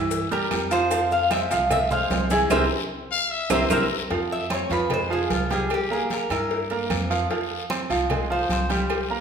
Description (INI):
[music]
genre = latin, Cuban son and guajira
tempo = 150 BPM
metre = 4/4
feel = straight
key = F harmonic minor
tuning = A4 = 440 Hz
[part]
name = bright baby grand piano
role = arpeggios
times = 0.0-9.2 s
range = E3 to E6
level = -25 LUFS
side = right 3 dB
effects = none
[part]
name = upright bass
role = bass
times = 0.0-8.9 s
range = C2 to G2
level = -30 LUFS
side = equal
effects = none
[part]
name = congas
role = percussion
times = 0.1-9.2 s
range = none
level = -33 LUFS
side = equal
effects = none
[part]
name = cowbell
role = percussion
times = 0.1-9.1 s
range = none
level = -33 LUFS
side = left 5 dB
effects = none
[part]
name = guiro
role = percussion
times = 0.1-9.2 s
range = none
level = -36 LUFS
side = left 7 dB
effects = none
[part]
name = maracas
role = percussion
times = 0.1-3.8 s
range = none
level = -39 LUFS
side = left 8 dB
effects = none
[part]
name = Cuban tres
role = melody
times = 0.3-9.1 s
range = F4 to F5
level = -26 LUFS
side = left 1 dB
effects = none
[part]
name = agogo bells and timbales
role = percussion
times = 0.3-9.1 s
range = none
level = -33 LUFS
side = right 5 dB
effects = none
[part]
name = claves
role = percussion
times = 0.5-9.1 s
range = none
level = -38 LUFS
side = right 6 dB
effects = none
[part]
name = growling trumpet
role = second line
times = 3.1-4.1 s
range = Bb4 to F5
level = -26 LUFS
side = left 5 dB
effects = none
[sound]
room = wet recital hall reverb, RT60 1.3 s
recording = recorded in a church or concert hall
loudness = -21 LUFS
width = side -7 dB against mid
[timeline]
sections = 0.0-4.1 A section; 4.1-9.2 B section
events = band accent 2.5-4.1; drum fill 3.5-4.1; Cuban tres solo 4.1-9.2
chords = 0.0 C7; 0.9 Fm; 2.5 C7; 4.1 Fm; 5.7 Fsus24; 7.3 Fm